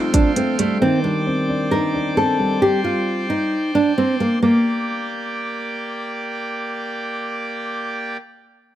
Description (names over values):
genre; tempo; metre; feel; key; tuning
hip hop, trap; 133 BPM; 4/4; half-time; G minor; A4 = 440 Hz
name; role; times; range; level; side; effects
nylon-string guitar; melody; 0.0-5.7 s; A3 to Bb4; -18 LUFS; right 1 dB; none
dark concert grand piano; accompaniment; 0.0-3.5 s; Eb3 to F4; -22 LUFS; left 1 dB; none
pipe organ, trumpet; sustained chords; 0.0-8.2 s; Bb3 to D6; -26 LUFS; right 1 dB; none
trap drum kit; drums; 0.1-0.7 s; hi-hat, kick drum; -19 LUFS; equal; none
room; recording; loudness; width
little or no reverb; none; -18 LUFS; side -12 dB against mid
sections
0.0-4.4 A section; 4.4-8.0 B section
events
none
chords
0.0 Fadd9; 0.8 Cmadd9; 4.4 Gm